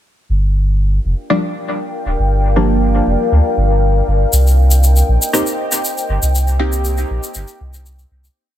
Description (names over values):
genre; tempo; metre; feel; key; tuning
dub techno; 119 BPM; 4/4; straight; G minor; A4 = 441 Hz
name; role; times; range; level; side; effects
deep dark ambient pad; sustained chords; 1.6-8.3 s; Bb4 to G5; -20 LUFS; left 2 dB; chorus, built-in reverb
warm sub bass; bass; 0.3-8.3 s; D1 to D2; -13 LUFS; equal; none
deep mellow chord stab; stabs; 1.3-8.3 s; F3 to G4; -19 LUFS; right 1 dB; chorus, phaser, dub echo
egg shaker; percussion; 4.3-8.3 s; none; -20 LUFS; left 2 dB; none
room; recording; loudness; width
digital ambience; dense, heavily limited modern master; -13 LUFS; side -12 dB against mid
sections
0.3-8.4 groove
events
fade-out 5.7-8.4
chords
0.3 Gm7; 4.3 Cm7